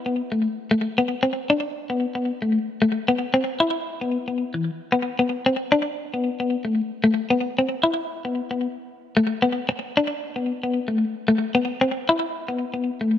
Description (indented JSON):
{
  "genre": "highlife",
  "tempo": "113 BPM",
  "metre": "4/4",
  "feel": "straight",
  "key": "unclear",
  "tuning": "A4 = 440 Hz",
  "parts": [
    { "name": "clean electric guitar", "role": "solo", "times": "0.1-13.2 s", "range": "E3 to E4", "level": "-21 LUFS", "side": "left 2 dB", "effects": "tremolo, slapback echo" }
  ],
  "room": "light reverb",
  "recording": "none",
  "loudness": "-21 LUFS",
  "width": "side -10 dB against mid",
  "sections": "0.0-1.5 A section; 1.5-13.2 B section",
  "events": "none",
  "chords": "none",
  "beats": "0.44 0.97 | 1.50 2.03 2.56 3.09 | 3.62 4.14 4.67 5.20 | 5.73 6.26 6.79 7.32 | 7.85 8.38 8.91 9.44 | 9.97 10.50 11.03 11.55 | 12.08 12.61 13.14"
}